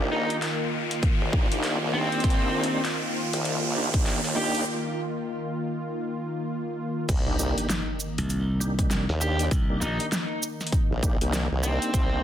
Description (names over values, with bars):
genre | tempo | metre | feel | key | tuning
glitch hop | 99 BPM | 4/4 | swing 61% on 16ths | C minor | A4 = 440 Hz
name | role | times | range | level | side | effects
warm analog pad | sustained chords | 0.0-12.2 s | Eb3 to F4 | -32 LUFS | left 1 dB | chorus, vintage 12-bit sampler grit, sidechain pumping
tonewheel organ | stabs | 0.0-12.2 s | Bb3 to G4 | -32 LUFS | equal | overdrive, chorus vibrato, slow rotary speaker, sidechain pumping, digital delay
formant-sweep wobble bass | bass | 0.0-12.2 s | Bb1 to Eb2 | -29 LUFS | equal | chorus, high-pass filter
riser and impact | sound effects | 0.0-9.5 s | none | -32 LUFS | equal | none
ethereal airy pad | texture | 0.1-4.7 s | F4 to G5 | -37 LUFS | equal | ensemble chorus, built-in reverb, sidechain pumping
smooth overdriven lead guitar | melody | 0.1-4.6, 9.2-12.2 s | C4 to G4 | -31 LUFS | equal | vintage 12-bit sampler grit, digital delay
dubstep drum kit | drums | 0.3-12.1 s | crash cymbal, hi-hat, snare drum | -32 LUFS | left 1 dB | high-pass filter on hats, high-pass filter on snare, high-pass filter on cymbals
electronic kick drum | drums | 1.0-12.1 s | none | -24 LUFS | equal | none
cabasa | percussion | 7.1-12.1 s | none | -34 LUFS | right 4 dB | none
glassy slap bass | bass | 8.2-10.0 s | Bb1 to C2 | -26 LUFS | equal | none
room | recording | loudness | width
light reverb, digital ambience | dense, heavily limited modern master | -24 LUFS | side -10 dB against mid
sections
0.0-7.1 A section; 7.1-12.2 B section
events
build-up 0.0-7.1; riser 0.0-4.7; break 4.7-7.1; drop 7.1-12.2; impact 7.1-9.5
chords
0.0 Cm9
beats
0.42 1.03 1.64 | 2.24 2.85 3.45 4.06 | 4.67 5.27 5.88 6.48 | 7.09 7.70 8.30 8.91 | 9.51 10.12 10.72 11.33 | 11.94